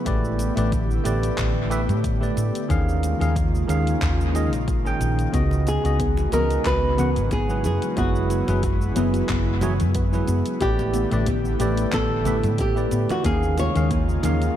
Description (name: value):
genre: sunset chillout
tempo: 91 BPM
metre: 4/4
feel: swing 55% on 16ths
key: unclear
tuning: A4 = 440 Hz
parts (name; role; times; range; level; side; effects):
- bell-like tine electric piano; accompaniment; 0.0-14.6 s; C#3 to G5; -27 LUFS; right 1 dB; auto-pan, tape echo
- airy breathy pad; sustained chords; 0.0-14.6 s; C#3 to G4; -29 LUFS; right 1 dB; chorus
- hollow-body short-scale fingered electric bass; bass; 0.1-14.5 s; F#1 to A2; -23 LUFS; equal; none
- deep house drum kit; drums; 0.1-14.5 s; cabasa, handclaps, hi-hat; -35 LUFS; left 1 dB; analog delay
- electronic kick drum; drums; 0.1-14.1 s; none; -27 LUFS; equal; none
- soft round pluck; arpeggios; 5.3-14.4 s; A#3 to G4; -30 LUFS; left 3 dB; chorus, tape echo
- congas; percussion; 5.5-14.4 s; none; -34 LUFS; right 3 dB; none
- flamenco guitar; melody; 5.7-14.2 s; F#4 to C#5; -26 LUFS; right 1 dB; dub echo
room: light reverb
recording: echo-heavy mix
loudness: -19 LUFS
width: side -11 dB against mid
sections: 0.0-14.6 A section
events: none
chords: 0.1 A9sus4; 2.7 D#9sus4; 5.3 C#9sus4; 7.6 F#9sus4; 10.6 A9sus4; 13.2 D#9sus4